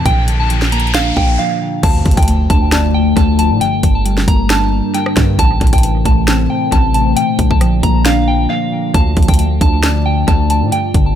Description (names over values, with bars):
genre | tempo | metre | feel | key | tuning
hip hop, trap | 135 BPM | 4/4 | half-time | D minor | A4 = 442 Hz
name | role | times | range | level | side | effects
soft synth bell | melody | 0.0-11.2 s | F5 to Bb5 | -19 LUFS | equal | chorus, phaser, low-pass filter, tape echo
muted felt-like synth keys | accompaniment | 0.0-11.2 s | G2 to D5 | -18 LUFS | equal | chorus, low-pass filter, tape echo
hard-hitting 808-style bass | bass | 0.0-11.2 s | G1 to A2 | -15 LUFS | equal | none
riser and impact | sound effects | 0.0-3.6 s | none | -23 LUFS | equal | none
trap drum kit | drums | 0.1-11.1 s | crash cymbal, hi-hat, kick drum, rim click, snare drum | -15 LUFS | equal | none
glassy FM pad | sustained chords | 2.6-11.2 s | D3 to D5 | -21 LUFS | left 5 dB | ensemble chorus, built-in reverb, phaser
room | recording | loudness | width
little or no reverb | echo-heavy mix | -11 LUFS | side -10 dB against mid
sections
0.0-1.8 A section; 1.8-11.2 B section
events
riser 0.0-1.8; break 1.4-1.8, 8.5-8.9; impact 1.8-3.6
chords
0.1 Bb; 1.8 Dm; 3.6 Gm; 5.4 Am; 7.2 Bb; 8.9 Dm